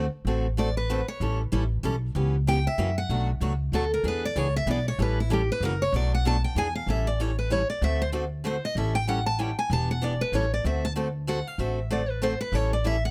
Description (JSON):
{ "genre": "acoustic string swing (jazz manouche)", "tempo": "191 BPM", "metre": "3/4", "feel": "swing 58% on 8ths", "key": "A mixolydian", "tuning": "A4 = 439 Hz", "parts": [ { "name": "picked steel-string acoustic guitar", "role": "accompaniment", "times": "0.0-13.0 s", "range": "B2 to A4", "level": "-33 LUFS", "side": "equal", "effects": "none" }, { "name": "upright bass", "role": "bass", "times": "0.0-13.1 s", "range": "E1 to F#2", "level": "-29 LUFS", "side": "equal", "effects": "none" }, { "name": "picked steel-string acoustic guitar", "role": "melody", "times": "0.6-13.1 s", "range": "E4 to A5", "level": "-31 LUFS", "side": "equal", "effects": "none" } ], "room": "little or no reverb", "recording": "close, detailed microphones", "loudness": "-27 LUFS", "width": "mono", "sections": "0.0-6.9 A section; 6.9-13.1 A section", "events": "steel-string acoustic guitar solo 0.0-13.1", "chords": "0.0 D7; 1.2 A7; 2.2 C#m7b5; 2.8 F#7; 3.1 Bm7; 4.0 E7; 5.0 A7; 5.6 F#7; 5.9 Bm7; 6.6 E7; 6.9 A7; 7.8 D7; 8.8 A7; 9.7 Em7; 10.3 A7; 10.6 D7; 12.5 A7" }